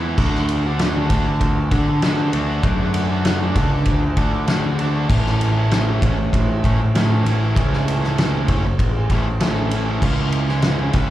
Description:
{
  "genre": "quiet-loud alternative rock",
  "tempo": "98 BPM",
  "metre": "4/4",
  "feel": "straight",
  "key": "unclear",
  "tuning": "A4 = 439 Hz",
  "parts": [
    { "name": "cranked stack guitar", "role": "riff", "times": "0.0-11.1 s", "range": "A2 to F#4", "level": "-23 LUFS", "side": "right 1 dB", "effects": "overdrive, slapback echo" },
    { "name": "growling picked electric bass", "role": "bass", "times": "0.0-11.1 s", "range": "F#1 to D3", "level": "-20 LUFS", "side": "equal", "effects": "overdrive" },
    { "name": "loose indie drum kit", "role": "drums", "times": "0.2-11.1 s", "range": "crash cymbal, kick drum, ride cymbal, snare drum", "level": "-20 LUFS", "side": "equal", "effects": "none" }
  ],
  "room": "little or no reverb",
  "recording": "live gig heard through the venue's PA, club reverb",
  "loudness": "-16 LUFS",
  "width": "side -14 dB against mid",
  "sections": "0.0-11.1 A section",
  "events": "none",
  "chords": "0.2 D; 5.1 A; 10.0 C#m"
}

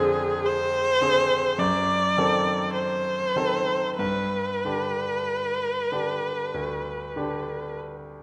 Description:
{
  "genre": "classical, romantic duo for viola and grand piano",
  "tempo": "46-56 BPM",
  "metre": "4/4",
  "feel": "rubato",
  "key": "unclear",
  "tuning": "A4 = 441 Hz",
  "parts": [
    { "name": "warm viola", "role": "melody", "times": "0.0-7.8 s", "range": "Ab4 to D5", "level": "-27 LUFS", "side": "equal", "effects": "none" },
    { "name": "bright concert grand piano", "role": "accompaniment", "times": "0.0-8.2 s", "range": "D2 to A4", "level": "-31 LUFS", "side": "equal", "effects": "none" }
  ],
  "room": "wet recital hall reverb, RT60 1.6 s",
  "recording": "none",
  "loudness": "-25 LUFS",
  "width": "mono",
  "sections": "0.0-8.2 A section",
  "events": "none",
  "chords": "0.0 Dm7b5/F; 1.6 F#dim7; 4.0 G"
}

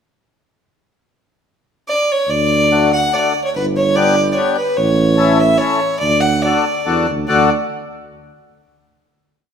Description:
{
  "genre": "alpine folk, alpine dance band",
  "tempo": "144 BPM",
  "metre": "3/4",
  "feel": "swing 54% on 8ths",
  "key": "D major",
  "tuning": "A4 = 443 Hz",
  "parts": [
    { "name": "clear fiddle", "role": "melody", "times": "1.9-7.5 s", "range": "B4 to F#5", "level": "-16 LUFS", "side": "equal", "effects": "none" },
    { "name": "mellow tuba", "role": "bass", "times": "2.3-7.5 s", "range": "G1 to E2", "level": "-18 LUFS", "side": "right 2 dB", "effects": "none" },
    { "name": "accordion", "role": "accompaniment", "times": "2.7-7.5 s", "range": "A3 to A4", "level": "-18 LUFS", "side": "left 4 dB", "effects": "none" }
  ],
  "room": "moderate recital hall reverb, RT60 1.8 s",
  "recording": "minimal, uncompressed stereo recording",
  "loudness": "-13 LUFS",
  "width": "side -7 dB against mid",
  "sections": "1.0-2.3 pickup bar; 2.3-7.3 A section; 7.3-8.5 final chord",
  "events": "none",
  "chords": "1.0 N.C.; 2.3 D; 3.5 G; 4.8 A; 6.0 D"
}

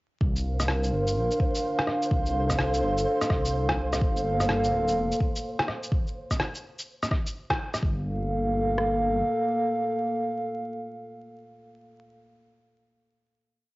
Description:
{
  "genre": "future garage",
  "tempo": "126 BPM",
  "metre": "4/4",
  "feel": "swing 63% on 16ths",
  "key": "G minor",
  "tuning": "A4 = 441 Hz",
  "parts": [
    { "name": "dark analog pad", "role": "sustained chords", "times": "0.2-12.1 s", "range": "Bb3 to F5", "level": "-27 LUFS", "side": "equal", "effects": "chorus, sidechain pumping" },
    { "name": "dark detuned saw bass", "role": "bass", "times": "0.2-9.2 s", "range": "D1 to C2", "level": "-29 LUFS", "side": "equal", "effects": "sidechain pumping" },
    { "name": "deep house drum kit", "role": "drums", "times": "0.2-8.9 s", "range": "kick drum, rim click", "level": "-27 LUFS", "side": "equal", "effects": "studio reverb, cassette tape" },
    { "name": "flickering grainy texture", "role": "texture", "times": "0.6-5.9 s", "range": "C5", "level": "-37 LUFS", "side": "right 2 dB", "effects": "built-in reverb" },
    { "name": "electronic shaker and rim click", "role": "drums", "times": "0.4-7.8 s", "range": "none", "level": "-29 LUFS", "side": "equal", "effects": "studio reverb, cassette tape" }
  ],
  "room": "light reverb",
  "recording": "home recording on cassette, vinyl crackle, nothing above 7.6 kHz",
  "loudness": "-24 LUFS",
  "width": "side -20 dB against mid",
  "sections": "0.2-7.8 groove; 7.8-11.6 final chord",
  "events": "band accent 7.5",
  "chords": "0.2 C9sus4; 4.0 Gm9"
}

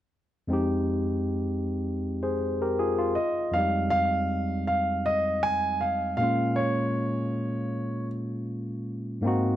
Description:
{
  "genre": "soul",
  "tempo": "79 BPM",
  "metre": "4/4",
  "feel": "swing 54% on 16ths",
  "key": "F minor",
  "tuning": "A4 = 439 Hz",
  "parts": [
    { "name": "barky tine electric piano", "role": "accompaniment", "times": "0.5-9.6 s", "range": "F2 to C5", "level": "-27 LUFS", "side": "equal", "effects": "none" },
    { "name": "warm concert grand piano", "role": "melody", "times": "3.2-8.0 s", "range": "Db5 to Ab5", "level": "-26 LUFS", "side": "right 1 dB", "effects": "none" }
  ],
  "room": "moderate plate reverb, RT60 2.7 s",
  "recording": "dark, warm production",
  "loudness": "-25 LUFS",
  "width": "side -12 dB against mid",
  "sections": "0.5-3.5 A section; 3.5-9.6 B section",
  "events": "none",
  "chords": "0.5 Fm7; 3.2 N.C.; 3.5 Fm7; 6.2 Bbm7"
}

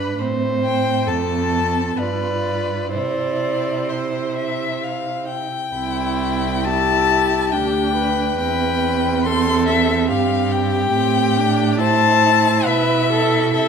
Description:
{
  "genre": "classical, slow romantic movement for string quartet",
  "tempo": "62-73 BPM",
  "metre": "3/4",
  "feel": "rubato",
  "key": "C major",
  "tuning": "A4 = 440 Hz",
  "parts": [
    { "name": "rich violin", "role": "melody", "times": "0.0-13.7 s", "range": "C5 to C6", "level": "-21 LUFS", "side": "left 8 dB", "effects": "none" },
    { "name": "warm violin", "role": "second line", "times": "0.0-13.7 s", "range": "E4 to C5", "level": "-23 LUFS", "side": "left 1 dB", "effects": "none" },
    { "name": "warm viola", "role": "accompaniment", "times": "0.0-13.7 s", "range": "C4 to F4", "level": "-23 LUFS", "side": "right 7 dB", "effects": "none" },
    { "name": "clear cello", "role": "bass", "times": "0.0-13.7 s", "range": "C2 to C3", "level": "-24 LUFS", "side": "right 4 dB", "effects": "none" }
  ],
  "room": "wet recital hall reverb, RT60 1.5 s",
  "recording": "none",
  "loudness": "-16 LUFS",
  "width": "side -6 dB against mid",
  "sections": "0.0-5.8 A section; 5.8-13.7 B section",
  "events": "none",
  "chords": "0.2 Am; 1.1 F; 2.0 G7; 3.0 C; 8.4 C/E; 10.9 Am7"
}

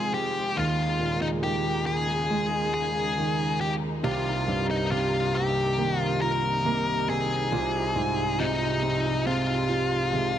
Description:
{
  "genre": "pop ballad",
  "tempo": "69 BPM",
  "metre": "4/4",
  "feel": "straight",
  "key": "unclear",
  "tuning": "A4 = 440 Hz",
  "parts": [
    { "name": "octave-fuzz lead guitar", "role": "melody", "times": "0.0-10.4 s", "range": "Eb4 to Bb4", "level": "-27 LUFS", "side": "left 3 dB", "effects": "distortion" },
    { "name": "warm concert grand piano", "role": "accompaniment", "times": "0.0-10.4 s", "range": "C2 to C4", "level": "-28 LUFS", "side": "right 1 dB", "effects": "none" },
    { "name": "dark symphonic string section", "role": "sustained chords", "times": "0.0-10.4 s", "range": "C3 to F4", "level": "-33 LUFS", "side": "equal", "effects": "none" },
    { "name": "flamenco guitar", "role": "arpeggios", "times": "4.0-10.4 s", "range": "C3 to G4", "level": "-32 LUFS", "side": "right 5 dB", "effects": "none" }
  ],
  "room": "wet concert hall reverb, RT60 1.8 s, small room ambience",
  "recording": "none",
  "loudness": "-24 LUFS",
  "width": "side -10 dB against mid",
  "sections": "0.0-10.4 A section",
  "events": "none",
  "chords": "0.0 Fm7; 0.6 Eb7sus4; 4.0 Cm7; 7.5 Ab6/C"
}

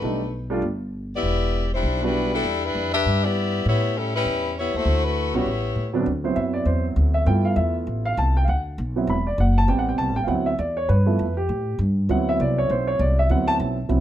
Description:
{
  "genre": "jazz, big band swing",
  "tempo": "199 BPM",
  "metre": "4/4",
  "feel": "swing 60% on 8ths",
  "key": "D mixolydian",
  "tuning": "A4 = 440 Hz",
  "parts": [
    { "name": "warm saxophone section", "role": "melody", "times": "0.0-6.0 s", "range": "G3 to E5", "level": "-23 LUFS", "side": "left 3 dB", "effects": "none" },
    { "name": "warm baby grand piano", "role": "accompaniment", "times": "0.0-2.4, 5.3-14.0 s", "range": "D2 to B5", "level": "-23 LUFS", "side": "right 2 dB", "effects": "none" },
    { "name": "upright bass", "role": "bass", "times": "0.0-14.0 s", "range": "E1 to A2", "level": "-23 LUFS", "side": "equal", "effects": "none" }
  ],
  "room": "light reverb",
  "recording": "close, detailed microphones",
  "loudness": "-20 LUFS",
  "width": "side -12 dB against mid",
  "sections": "0.0-6.1 A section; 6.1-14.0 B section",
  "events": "grand piano solo 6.1-14.0",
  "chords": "0.0 B7alt; 1.2 Em7; 3.7 A9; 4.9 D69; 5.5 A13; 6.1 D13; 7.3 G13; 8.5 D13; 9.7 Am7; 10.3 D13; 10.9 G13; 12.1 D13"
}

